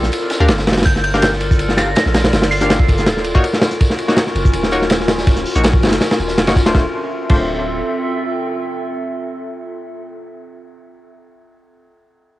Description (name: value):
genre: drum and bass, jungle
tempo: 163 BPM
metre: 4/4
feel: swing 54% on 16ths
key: D minor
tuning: A4 = 439 Hz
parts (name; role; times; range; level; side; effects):
- warbly tape-like pad; sustained chords; 0.0-9.8 s; C4 to E5; -22 LUFS; equal; chorus, built-in reverb, cassette tape
- long sustained 808-style bass; bass; 0.0-7.8 s; D1 to D2; -20 LUFS; equal; none
- crunchy breakbeat drum kit; drums; 0.0-7.4 s; crash cymbal, kick drum, ride cymbal, snare drum; -15 LUFS; equal; cassette tape
- crunchy breakbeat drum kit; drums; 0.0-6.7 s; hi-hat, snare drum, tambourine; -28 LUFS; left 1 dB; high-pass filter on hats, cassette tape, high-pass filter on snare, high-pass filter on perc, high-pass filter on room
- filtered dub chord stab; stabs; 0.4-10.4 s; A3 to F5; -22 LUFS; left 2 dB; chorus, cassette tape, dub echo
- glassy synth bell; melody; 0.9-3.0 s; G6 to C7; -22 LUFS; right 2 dB; chorus, tremolo, cassette tape, dub echo
room: moderate small room reverb, RT60 0.5 s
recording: home recording on cassette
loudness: -13 LUFS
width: side -16 dB against mid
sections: 0.0-6.7 A section; 6.7-9.7 B section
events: drop 0.0-6.7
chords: 0.0 Gm7; 3.1 Ebm7; 6.7 Dm7